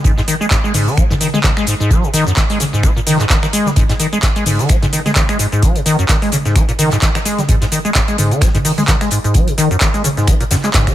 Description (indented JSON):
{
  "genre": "acid house",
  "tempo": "129 BPM",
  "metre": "4/4",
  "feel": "swing 56% on 16ths",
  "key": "G# minor",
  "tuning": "A4 = 440 Hz",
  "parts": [
    { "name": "acid bass, square", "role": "riff", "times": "0.0-10.9 s", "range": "F#2 to G#3", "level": "-16 LUFS", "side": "equal", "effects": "tube saturation, lush chorus, sidechain pumping, digital delay" },
    { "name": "deep reggae drum kit", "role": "drums", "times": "0.0-10.9 s", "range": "hi-hat, snare drum", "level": "-29 LUFS", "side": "right 4 dB", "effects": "none" },
    { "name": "electronic kick drum", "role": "drums", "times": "0.0-10.9 s", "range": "none", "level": "-15 LUFS", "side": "equal", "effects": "none" },
    { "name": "booming analog drum machine", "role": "drums", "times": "0.1-10.9 s", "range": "cabasa, finger snaps, handclaps, hi-hat, toms", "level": "-18 LUFS", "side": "equal", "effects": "none" }
  ],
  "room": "digital ambience",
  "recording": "none",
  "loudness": "-12 LUFS",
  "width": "side -13 dB against mid",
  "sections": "0.0-10.9 A section",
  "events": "filter sweep on acid bass 0.0-10.9",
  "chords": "none"
}